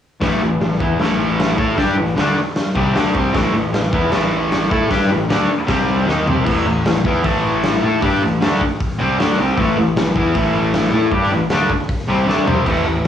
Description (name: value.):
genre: garage rock duo or trio.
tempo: 154 BPM.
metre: 4/4.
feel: straight.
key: unclear.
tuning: A4 = 440 Hz.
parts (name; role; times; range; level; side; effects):
fuzz guitar; riff; 0.2-13.1 s; A2 to A4; -16 LUFS; equal; distortion.
growling fingered electric bass; bass; 0.2-13.1 s; A1 to A2; -24 LUFS; left 1 dB; overdrive.
raw garage drum kit; drums; 0.2-13.1 s; crash cymbal, hi-hat, kick drum, snare drum, toms; -21 LUFS; left 1 dB; none.
room: light reverb.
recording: home recording on cassette, studio reverb.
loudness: -14 LUFS.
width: side -9 dB against mid.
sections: 0.2-6.5 A section; 6.5-13.1 B section.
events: drum fill 6.1-6.5, 12.3-12.7.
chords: 0.2 A5; 5.7 C5; 6.1 Cm7; 6.5 A5.